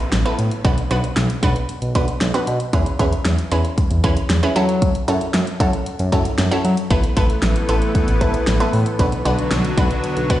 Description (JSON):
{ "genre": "synth-pop", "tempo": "115 BPM", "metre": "4/4", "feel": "straight", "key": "unclear", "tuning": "A4 = 440 Hz", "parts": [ { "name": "analog pluck", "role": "accompaniment", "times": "0.0-10.4 s", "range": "B3 to B4", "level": "-23 LUFS", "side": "right 1 dB", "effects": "chorus" }, { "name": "downlifter", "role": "sound effects", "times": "0.0-2.7 s", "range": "none", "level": "-37 LUFS", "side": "left 1 dB", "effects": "none" }, { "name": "smooth synth bass", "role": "bass", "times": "0.1-10.4 s", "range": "A1 to F#3", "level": "-20 LUFS", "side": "equal", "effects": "none" }, { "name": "pop drum kit", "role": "drums", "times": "0.1-10.4 s", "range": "hi-hat, kick drum, snare drum", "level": "-20 LUFS", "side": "equal", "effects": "none" }, { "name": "lush unison pad", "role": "sustained chords", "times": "6.9-10.4 s", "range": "D3 to B3", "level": "-22 LUFS", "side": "left 1 dB", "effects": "chorus" } ], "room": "light reverb", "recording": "played on a big sound system in a bare room, stone room reverb, nothing above 10.5 kHz", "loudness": "-16 LUFS", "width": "side -14 dB against mid", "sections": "0.0-10.4 A section", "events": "none", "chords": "0.0 Asus2; 0.6 Bm; 2.7 E6; 4.6 F#m7; 6.9 Asus2; 9.0 Bm" }